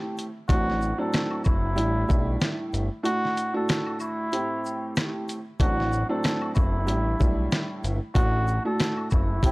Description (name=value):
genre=hip hop, boom-bap hip-hop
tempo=94 BPM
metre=4/4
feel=swing 59% on 16ths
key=unclear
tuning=A4 = 440 Hz
part: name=dark upright piano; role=accompaniment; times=0.0-9.5 s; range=A2 to G4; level=-29 LUFS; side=right 1 dB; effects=cassette tape, high-pass filter, low-pass filter
part: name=dusty soul sampler-style drum kit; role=drums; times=0.2-9.5 s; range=hi-hat, kick drum, rim click, shaker, snare drum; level=-24 LUFS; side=equal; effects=none
part: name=egg shaker and woodblock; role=percussion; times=0.2-9.5 s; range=none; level=-43 LUFS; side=left 4 dB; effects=none
part: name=trumpet with cup mute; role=melody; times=0.5-9.5 s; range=E4 to A4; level=-30 LUFS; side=equal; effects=high-pass filter, low-pass filter, tape echo
part: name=fat analog bass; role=bass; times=0.5-9.5 s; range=F#1 to B1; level=-26 LUFS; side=equal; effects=none
room=little or no reverb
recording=dry, gritty hardware recording, cassette tape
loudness=-23 LUFS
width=side -24 dB against mid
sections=0.0-9.5 A section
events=break 3.0-5.6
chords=0.5 D7/A; 1.8 Em7/A; 3.0 Dadd9/A; 4.3 Am7; 5.6 D7/A; 6.9 Em7/A; 8.2 Dadd9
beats=| 0.49 1.13 1.77 2.41 | 3.05 3.69 4.32 4.96 | 5.60 6.24 6.88 7.51 | 8.15 8.79 9.43